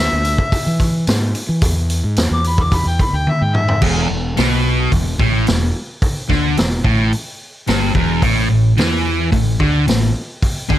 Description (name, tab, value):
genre	blues rock power trio and southern rock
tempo	109 BPM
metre	4/4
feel	straight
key	unclear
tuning	A4 = 441 Hz
part	overdriven harmonica	melody	0.0-3.8 s	E5 to D6	-21 LUFS	left 2 dB	none
part	fuzz fingered electric bass	bass	0.0-10.8 s	E1 to E3	-19 LUFS	equal	overdrive
part	vintage drum kit	drums	0.2-10.8 s	crash cymbal, hi-hat, kick drum, snare drum, toms	-18 LUFS	equal	none
part	overdriven electric guitar	riff	3.8-10.8 s	E2 to E3	-16 LUFS	equal	none
room	little or no reverb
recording	none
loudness	-14 LUFS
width	side -13 dB against mid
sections	0.0-3.8 A section; 3.8-10.8 B section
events	harmonica solo 0.0-3.8; drum fill 3.3-3.8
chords	0.0 E7; 3.8 E5; 8.2 A5